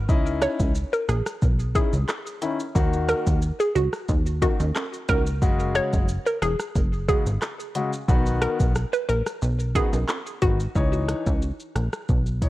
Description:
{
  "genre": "dancehall",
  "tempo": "90 BPM",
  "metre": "4/4",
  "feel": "straight",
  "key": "unclear",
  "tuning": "A4 = 438 Hz",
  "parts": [
    { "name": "plucky analog bass", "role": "bass", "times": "0.0-12.5 s", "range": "Fb1 to Eb2", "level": "-24 LUFS", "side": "equal", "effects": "none" },
    { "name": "warm grand piano", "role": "accompaniment", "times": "0.1-12.5 s", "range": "Db3 to Db5", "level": "-28 LUFS", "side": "left 4 dB", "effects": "none" },
    { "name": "afro-pop drum kit", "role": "drums", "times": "0.1-12.5 s", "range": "handclaps, hi-hat, kick drum, rim click, shaker", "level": "-24 LUFS", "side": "equal", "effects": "none" },
    { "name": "maracas and timbales", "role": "percussion", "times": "0.1-10.7 s", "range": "none", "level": "-37 LUFS", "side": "right 5 dB", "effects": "none" },
    { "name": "hollow square pluck", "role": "melody", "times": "0.4-10.6 s", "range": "Gb4 to Db5", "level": "-27 LUFS", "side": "right 1 dB", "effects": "chorus, digital delay" }
  ],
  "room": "digital ambience",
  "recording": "worn, warbling old tape, cassette tape, warbly pitch drift",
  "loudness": "-21 LUFS",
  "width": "side -16 dB against mid",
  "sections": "0.0-10.8 A section; 10.8-12.5 B section",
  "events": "none",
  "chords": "0.1 Dbmadd9; 2.8 Ebm; 5.4 Gbsus2; 8.1 B; 10.8 Dbmadd9"
}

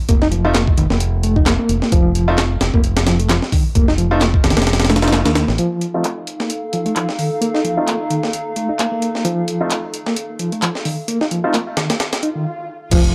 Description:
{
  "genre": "breakbeat, breaks",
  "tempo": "131 BPM",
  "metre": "4/4",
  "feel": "swing 56% on 16ths",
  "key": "unclear",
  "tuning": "A4 = 436 Hz",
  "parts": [
    { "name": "reed electric piano", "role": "riff", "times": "0.1-13.1 s", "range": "Eb3 to Eb4", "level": "-22 LUFS", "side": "equal", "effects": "fast tremolo, tube saturation, low-pass filter, analog delay" },
    { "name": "modern bright fingered electric bass", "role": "bass", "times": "0.1-5.6, 12.9-13.1 s", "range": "F1 to Eb2", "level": "-21 LUFS", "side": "equal", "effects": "none" },
    { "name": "breakbeat sampler-style drum kit", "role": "drums", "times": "0.1-13.0 s", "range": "crash cymbal, hi-hat, kick drum, snare drum", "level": "-20 LUFS", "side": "equal", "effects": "high-pass filter on snare, high-pass filter on hats, high-pass filter on kick, high-pass filter on cymbals, high-pass filter on room" },
    { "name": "bright grand piano", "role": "stabs", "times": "0.4-11.5 s", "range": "A3 to F4", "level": "-24 LUFS", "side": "equal", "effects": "vintage 12-bit sampler grit, low-pass filter, analog delay" },
    { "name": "garage drum kit", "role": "drums", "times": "0.5-13.1 s", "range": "handclaps, hi-hat", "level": "-26 LUFS", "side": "equal", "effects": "low-pass filter on snare, low-pass filter on hats" },
    { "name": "warbly tape-like pad", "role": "sustained chords", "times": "6.1-13.1 s", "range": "Eb4 to F5", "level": "-27 LUFS", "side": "equal", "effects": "chorus, built-in reverb, sidechain pumping" },
    { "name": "swell and impact", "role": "sound effects", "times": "12.2-13.1 s", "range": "none", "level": "-31 LUFS", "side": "equal", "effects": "none" }
  ],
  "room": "little or no reverb",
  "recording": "dry, gritty hardware recording",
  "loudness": "-17 LUFS",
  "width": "mono",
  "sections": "0.0-5.6 A section; 5.6-12.9 B section",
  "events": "filter sweep on reed electric piano 0.0-5.6, 5.6-12.9; band accent 5.1; filter sweep on drum 5.6-12.9; swell 12.2-12.9; stop 12.5-12.9; impact 12.9",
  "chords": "0.0 F7"
}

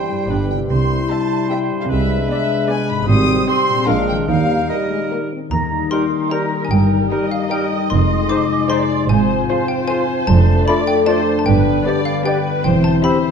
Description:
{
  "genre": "cinematic, playful, whimsical film cue",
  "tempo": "151 BPM",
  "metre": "3/4",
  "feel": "straight",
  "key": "Eb major from 3.1 s",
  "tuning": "A4 = 440 Hz",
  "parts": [
    { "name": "warm chamber violin section", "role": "melody", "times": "0.0-13.3 s", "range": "Bb4 to E5", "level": "-29 LUFS", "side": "left 5 dB", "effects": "none" },
    { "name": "clear chamber violin section", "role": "second line", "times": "0.0-13.3 s", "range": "C4 to Eb6", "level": "-29 LUFS", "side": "left 3 dB", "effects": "none" },
    { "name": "clear oboe", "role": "second line", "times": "0.0-13.2 s", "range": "Bb4 to E5", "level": "-31 LUFS", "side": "right 3 dB", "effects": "none" },
    { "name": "mellow clarinet", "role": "second line", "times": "0.0-13.2 s", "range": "C4 to G4", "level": "-27 LUFS", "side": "left 2 dB", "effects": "none" },
    { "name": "mellow small flute group", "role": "second line", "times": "0.0-13.3 s", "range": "Eb5 to Eb6", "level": "-24 LUFS", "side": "equal", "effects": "none" },
    { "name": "dark bassoon", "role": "accompaniment", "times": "0.0-13.2 s", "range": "F3 to C4", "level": "-26 LUFS", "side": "right 3 dB", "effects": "none" },
    { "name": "warm studio viola section", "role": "accompaniment", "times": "0.0-13.3 s", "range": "B3 to Eb5", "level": "-26 LUFS", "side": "right 1 dB", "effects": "none" },
    { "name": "mellow French horn section", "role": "sustained chords", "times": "0.0-13.3 s", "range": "D3 to F4", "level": "-23 LUFS", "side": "left 4 dB", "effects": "none" },
    { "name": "concert harp", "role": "arpeggios", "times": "0.0-13.3 s", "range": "E2 to D6", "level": "-22 LUFS", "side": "left 6 dB", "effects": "none" },
    { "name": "rich studio double bass section", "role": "bass", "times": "0.3-13.0 s", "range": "E1 to Eb2", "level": "-19 LUFS", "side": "right 4 dB", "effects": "none" },
    { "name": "warm studio cello section", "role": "bass", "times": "0.3-13.0 s", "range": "E2 to Eb3", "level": "-22 LUFS", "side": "right 3 dB", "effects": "none" },
    { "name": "warm tuba", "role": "bass", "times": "0.3-4.6 s", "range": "G1 to Eb2", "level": "-24 LUFS", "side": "right 3 dB", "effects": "none" },
    { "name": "xylophone with wooden mallets", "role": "melody", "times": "5.5-13.3 s", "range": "F5 to D6", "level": "-27 LUFS", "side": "left 3 dB", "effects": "none" }
  ],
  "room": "wet recital hall reverb, RT60 1.4 s",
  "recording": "dark, warm production",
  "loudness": "-14 LUFS",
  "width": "side -6 dB against mid",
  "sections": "0.0-5.5 A section; 5.5-13.3 B section",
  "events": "none",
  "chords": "0.3 G; 0.7 C; 1.9 E7/C; 3.1 Abmaj7; 3.9 Bb7; 4.3 Eb; 6.7 Eb/G; 7.9 Fm7; 9.1 Fm/Ab; 10.3 Dm/F; 11.5 G; 12.6 C/E"
}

